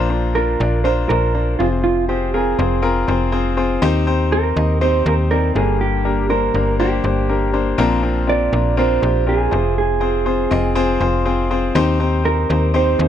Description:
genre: piano-driven pop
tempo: 121 BPM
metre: 4/4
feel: straight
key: Bb mixolydian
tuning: A4 = 439 Hz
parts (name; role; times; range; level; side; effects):
- clear concert grand piano; accompaniment; 0.0-13.1 s; G2 to Eb5; -19 LUFS; left 5 dB; none
- slap-like FM bass; bass; 0.0-13.1 s; F1 to Eb2; -19 LUFS; right 1 dB; none
- mellow electric guitar; melody; 0.4-13.1 s; F4 to D5; -20 LUFS; right 5 dB; none
room: little or no reverb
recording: dry, close 1970s-style studio recording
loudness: -15 LUFS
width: side -10 dB against mid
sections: 0.0-13.1 A section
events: none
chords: 0.0 Bbadd9; 1.6 Fm; 3.8 Cm/Eb; 5.6 Gm; 7.8 Bbadd9; 9.5 Fm; 11.8 Cm/Eb

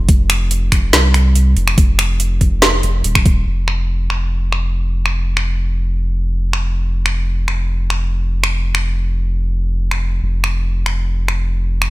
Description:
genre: deep dubstep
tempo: 142 BPM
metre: 4/4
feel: half-time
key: unclear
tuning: A4 = 439 Hz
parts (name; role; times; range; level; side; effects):
- soft dub sub bass; bass; 0.0-11.9 s; Eb1 to C2; -16 LUFS; equal; none
- electronic kick drum; drums; 0.1-3.3 s; none; -13 LUFS; equal; overdrive, studio reverb
- garage drum kit; drums; 0.1-11.9 s; finger snaps, hi-hat, snare drum; -17 LUFS; equal; overdrive, low-pass filter on hats, studio reverb, low-pass filter on snare
room: little or no reverb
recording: none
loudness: -14 LUFS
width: side -18 dB against mid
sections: 0.0-3.5 A section; 3.5-11.9 B section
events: none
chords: none

